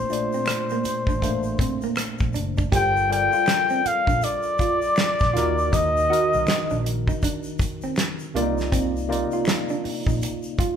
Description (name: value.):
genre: R&B, neo-soul.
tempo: 80 BPM.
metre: 4/4.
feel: swing 63% on 16ths.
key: unclear.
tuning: A4 = 440 Hz.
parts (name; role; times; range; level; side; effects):
warm flugelhorn; melody; 0.0-6.9 s; C5 to G5; -22 LUFS; left 2 dB; none.
tine electric piano; accompaniment; 0.0-10.8 s; Bb2 to D5; -28 LUFS; left 1 dB; medium stereo tremolo.
vintage muted fingered electric bass; bass; 0.0-10.2 s; Gb1 to Eb2; -29 LUFS; right 1 dB; none.
electric guitar at the edge of break-up; second line; 0.1-10.8 s; Bb3 to G4; -30 LUFS; right 6 dB; spring reverb.
damped 70s drum kit; drums; 0.1-10.8 s; hi-hat, kick drum, rim click, snare drum; -25 LUFS; equal; none.
tube shaker and finger snaps; percussion; 0.1-10.8 s; none; -39 LUFS; left 2 dB; none.
room: moderate large studio reverb, RT60 1.2 s.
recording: band playing live in one room.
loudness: -20 LUFS.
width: side -8 dB against mid.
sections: 0.0-2.7 A section; 2.7-10.8 B section.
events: none.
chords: 0.0 Bbmaj9; 2.7 Gm11; 5.4 Ebm; 8.4 Cm11.